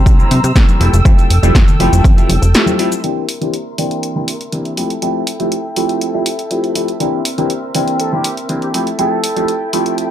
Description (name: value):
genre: filtered disco house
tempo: 121 BPM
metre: 4/4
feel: straight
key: F major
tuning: A4 = 440 Hz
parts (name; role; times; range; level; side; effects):
- bright grand piano; accompaniment; 0.0-10.1 s; E3 to G4; -17 LUFS; equal; phaser, sidechain pumping, low-pass filter
- dark studio violin section; sustained chords; 0.0-10.1 s; C4 to E6; -24 LUFS; equal; sidechain pumping, low-pass filter
- plucky analog bass; bass; 0.0-2.5 s; F1 to C3; -12 LUFS; equal; tube saturation, sidechain pumping, low-pass filter
- electronic kick drum; drums; 0.1-2.1 s; none; -10 LUFS; equal; overdrive
- punchy analog drum machine; drums; 0.1-10.1 s; hi-hat, shaker, snare drum; -19 LUFS; equal; overdrive, sidechain pumping on hats, sidechain pumping on perc
- tube shaker and congas; percussion; 0.1-3.0 s; none; -23 LUFS; left 4 dB; sidechain pumping on perc, low-pass filter on perc
- warm trumpet section; melody; 8.0-9.7 s; G4 to A4; -23 LUFS; equal; vintage 12-bit sampler grit, sidechain pumping, low-pass filter
room: light reverb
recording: dark, warm production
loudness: -12 LUFS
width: side -11 dB against mid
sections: 0.0-3.0 A section; 3.0-10.1 B section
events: break 2.5-3.0; filter sweep 3.0-10.1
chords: 0.0 C7; 0.8 Fmaj9; 3.0 C7; 4.8 Fmaj9; 7.0 C7; 8.7 Fmaj9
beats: 0.06 0.56 | 1.05 1.55 2.04 2.54 | 3.04 3.53 4.03 4.53 | 5.02 5.52 6.01 6.51 | 7.00 7.50 8.00 8.49 | 8.99 9.48 9.98